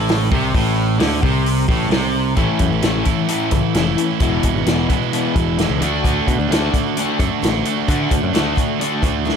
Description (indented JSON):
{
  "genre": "classic rock",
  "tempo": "131 BPM",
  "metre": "4/4",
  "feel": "straight",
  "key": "unclear",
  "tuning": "A4 = 440 Hz",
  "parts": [
    { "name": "cranked stack guitar", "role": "riff", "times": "0.0-9.4 s", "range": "E2 to F#4", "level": "-21 LUFS", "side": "right 12 dB", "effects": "overdrive" },
    { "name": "raw garage guitar", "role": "riff", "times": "0.0-9.4 s", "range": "E2 to D4", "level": "-22 LUFS", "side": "left 12 dB", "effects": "overdrive" },
    { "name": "modern bright picked electric bass", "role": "bass", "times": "0.0-9.3 s", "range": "E1 to D3", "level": "-21 LUFS", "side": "equal", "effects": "none" },
    { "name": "vintage drum kit", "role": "drums", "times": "0.1-9.4 s", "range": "hi-hat, kick drum, snare drum", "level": "-20 LUFS", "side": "equal", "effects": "none" },
    { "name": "picked twelve-string acoustic guitar", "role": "accompaniment", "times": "2.4-9.4 s", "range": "E2 to F#4", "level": "-27 LUFS", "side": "left 8 dB", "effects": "none" }
  ],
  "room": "light reverb",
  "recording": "none",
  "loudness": "-15 LUFS",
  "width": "side -7 dB against mid",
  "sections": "0.0-2.4 A section; 2.4-9.4 B section",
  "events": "none",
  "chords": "0.0 Amadd11; 2.4 A; 4.2 E; 5.8 D"
}